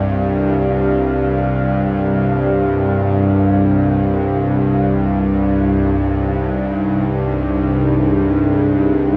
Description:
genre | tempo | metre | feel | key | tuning
dark ambient drone | free time | none | none | C minor | A4 = 440 Hz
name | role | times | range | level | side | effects
dark analog pad | sustained chords | 0.0-9.2 s | C4 to F5 | -24 LUFS | equal | chorus
bowed-like drone | drone | 0.0-9.2 s | C2 to G2 | -17 LUFS | equal | built-in reverb
room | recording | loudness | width
wet echo chamber reverb, RT60 2.1 s | none | -16 LUFS | mono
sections
0.0-9.2 A section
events
none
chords
0.0 C5; 5.3 Ab5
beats
free time

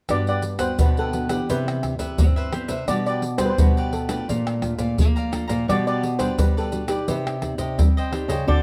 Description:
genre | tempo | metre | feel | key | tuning
samba and choro | 86 BPM | 4/4 | straight | G major | A4 = 441 Hz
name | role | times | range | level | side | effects
steel pan | melody | 0.1-8.6 s | G4 to D5 | -29 LUFS | equal | plate reverb
cavaquinho | accompaniment | 0.1-8.6 s | D4 to Bb5 | -35 LUFS | equal | none
nylon-string guitar | accompaniment | 0.1-8.6 s | G2 to D5 | -32 LUFS | equal | none
nylon-string guitar | bass | 0.1-8.6 s | G2 to C4 | -29 LUFS | equal | none
maracas, surdo, pandeiro and tamborim | percussion | 0.1-8.6 s | none | -24 LUFS | equal | none
room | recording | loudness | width
moderate studio reverb, RT60 0.7 s | none | -22 LUFS | mono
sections
0.1-8.6 A section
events
none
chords
0.1 Gmaj7; 1.5 Cmaj9; 2.9 Gmaj7/B; 4.3 Bbmaj7; 5.7 Gmaj7/B; 7.1 Cmadd9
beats
| 0.10 0.79 1.49 2.19 | 2.89 3.59 4.29 4.99 | 5.68 6.38 7.08 7.78 | 8.48

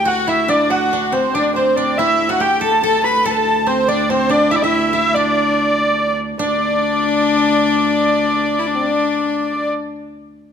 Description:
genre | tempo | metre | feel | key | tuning
medieval dance | 95 BPM (dotted quarters) | 6/8 | straight | D mixolydian | A4 = 441 Hz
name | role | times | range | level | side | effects
dark hurdy-gurdy | melody | 0.0-9.7 s | C5 to B5 | -16 LUFS | equal | none
koto | second line | 0.0-9.9 s | C4 to A4 | -22 LUFS | right 5 dB | none
rich fiddle | second line | 0.0-9.7 s | C4 to B4 | -20 LUFS | left 8 dB | none
rich viola da gamba | drone | 0.0-9.7 s | D2 | -26 LUFS | right 5 dB | none
room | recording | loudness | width
moderate recital hall reverb, RT60 1.5 s | close, detailed microphones | -14 LUFS | side -7 dB against mid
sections
0.0-6.4 A section; 6.4-8.9 B section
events
none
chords
none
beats
| 0.06 0.70 | 1.34 1.98 | 2.61 3.25 | 3.88 4.51 | 5.14 5.78 | 6.41 7.04 | 7.67 8.29

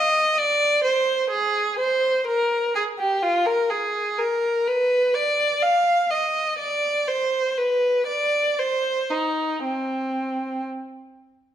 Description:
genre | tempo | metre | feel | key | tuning
classical, baroque-style suite movement for unaccompanied violin | 57-65 BPM | 3/4 | rubato | C minor | A4 = 441 Hz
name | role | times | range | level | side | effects
rich violin | solo | 0.0-10.7 s | C4 to F5 | -20 LUFS | equal | none
room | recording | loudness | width
moderate recital hall reverb, RT60 1.4 s | none | -20 LUFS | side -10 dB against mid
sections
0.0-11.5 A section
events
none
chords
none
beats
0.84 1.80 | 2.76 3.72 4.67 | 5.63 6.60 7.57 | 8.58 9.63

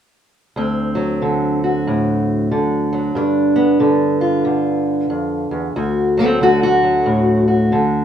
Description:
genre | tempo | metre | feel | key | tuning
acoustic country blues, solo or duo | 92 BPM | 4/4 | swing 62% on 8ths | D mixolydian | A4 = 438 Hz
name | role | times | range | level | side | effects
fingerpicked steel-string acoustic guitar | solo | 0.6-8.0 s | D2 to A4 | -14 LUFS | equal | none
room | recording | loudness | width
wet studio reverb, RT60 0.6 s | band playing live in one room | -14 LUFS | side -9 dB against mid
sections
0.6-5.8 A section; 5.8-8.0 B section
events
none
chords
0.6 D7; 3.2 G7; 5.8 D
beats
| 0.56 1.21 1.86 2.51 | 3.16 3.81 4.46 5.10 | 5.75 6.40 7.05 7.69

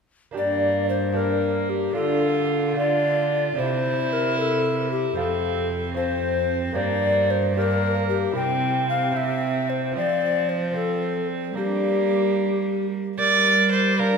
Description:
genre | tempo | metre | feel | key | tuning
classical, renaissance-style consort dance | 75 BPM (dotted quarters) | 6/8 | straight | G dorian | A4 = 439 Hz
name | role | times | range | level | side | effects
lute | accompaniment | 0.3-14.2 s | F2 to A4 | -29 LUFS | right 5 dB | none
mellow hollow tenor recorder | melody | 0.4-14.2 s | G4 to G5 | -24 LUFS | left 4 dB | none
rich violin | second line | 0.4-14.2 s | Bb3 to D5 | -26 LUFS | right 4 dB | none
warm cello | bass | 0.4-14.2 s | F2 to G3 | -27 LUFS | right 2 dB | none
room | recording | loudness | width
wet church reverb, RT60 3.1 s | none | -20 LUFS | side -5 dB against mid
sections
0.4-13.2 A section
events
none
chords
0.4 Gm; 2.0 Dm; 3.6 C; 5.2 F; 6.8 Gm; 8.4 C; 10.0 F; 11.6 Gm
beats
| 0.37 1.17 | 1.97 2.78 | 3.58 4.38 | 5.18 5.97 | 6.77 7.56 | 8.36 9.15 | 9.95 10.75 | 11.56 12.38 | 13.18 13.98

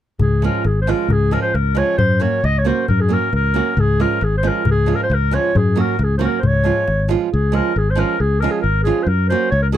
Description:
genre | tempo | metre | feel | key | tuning
balkan folk, Balkan wedding band | 135 BPM | 2/4 | straight | Db major | A4 = 439 Hz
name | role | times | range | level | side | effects
mellow clarinet | melody | 0.2-9.8 s | Ab4 to Eb5 | -20 LUFS | left 1 dB | none
fingered electric bass | bass | 0.2-9.8 s | Ab1 to Gb2 | -18 LUFS | left 1 dB | none
darbuka | percussion | 0.2-7.3 s | none | -22 LUFS | left 3 dB | none
nylon-string guitar | accompaniment | 0.4-9.8 s | F3 to Gb4 | -21 LUFS | right 11 dB | none
room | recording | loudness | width
little or no reverb | dry, close 1970s-style studio recording | -15 LUFS | side -11 dB against mid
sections
0.2-7.3 A section; 7.3-9.8 A section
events
none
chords
0.2 Db; 2.0 Gb; 3.8 Db; 5.5 Gb; 6.4 Db; 9.1 Gb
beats
| 0.22 0.66 | 1.11 1.55 | 2.00 2.44 | 2.88 3.33 | 3.77 4.22 | 4.66 5.10 | 5.55 5.99 | 6.43 6.88 | 7.32 7.76 | 8.20 8.64 | 9.08 9.53

